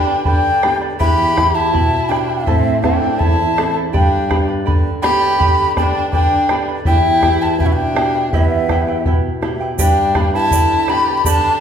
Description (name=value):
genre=andean folk, Andean ensemble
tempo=82 BPM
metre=2/4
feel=straight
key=unclear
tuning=A4 = 440 Hz
part: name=bright reedy large quena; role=melody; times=0.0-11.6 s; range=E5 to B5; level=-17 LUFS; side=left 2 dB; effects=none
part: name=warm violin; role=second line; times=0.0-11.6 s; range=B3 to G4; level=-22 LUFS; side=right 3 dB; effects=none
part: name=charango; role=accompaniment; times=0.0-11.6 s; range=E4 to B5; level=-23 LUFS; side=right 4 dB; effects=none
part: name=flamenco guitar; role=accompaniment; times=0.0-11.6 s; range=E2 to A4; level=-21 LUFS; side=left 1 dB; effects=none
part: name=bombo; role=percussion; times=0.3-11.4 s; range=none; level=-18 LUFS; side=equal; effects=none
part: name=tube shaker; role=percussion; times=9.8-11.4 s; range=none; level=-25 LUFS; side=right 6 dB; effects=none
room=wet large studio reverb, RT60 1.3 s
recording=band playing live in one room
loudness=-13 LUFS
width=side -8 dB against mid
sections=0.0-9.8 A section; 9.8-11.6 A section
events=none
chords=0.0 G; 1.0 Em; 2.5 Am; 3.9 G; 6.9 Em; 9.8 G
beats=0.26 | 1.00 1.73 | 2.47 3.20 | 3.93 4.67 | 5.40 6.13 | 6.87 7.60 | 8.33 9.06 | 9.79 10.53 | 11.26